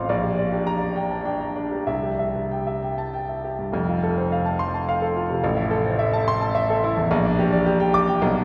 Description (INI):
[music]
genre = classical, virtuoso piano study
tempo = 94-109 BPM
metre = 3/4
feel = rubato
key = F major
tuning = A4 = 441 Hz
[part]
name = clear concert grand piano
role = solo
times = 0.0-8.4 s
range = F1 to D6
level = -23 LUFS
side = equal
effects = none
[sound]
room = wet cathedral reverb, RT60 5.1 s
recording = heard from further back in the room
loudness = -23 LUFS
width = mono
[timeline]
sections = 0.0-3.7 A section; 3.7-8.4 B section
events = none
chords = 0.1 Gm/Bb; 1.9 C; 3.7 F; 5.4 Am; 7.1 Gm/Bb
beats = | 0.08 0.65 1.25 | 1.87 2.50 3.13 | 3.74 4.32 4.88 | 5.44 5.99 6.55 | 7.11 7.66 8.22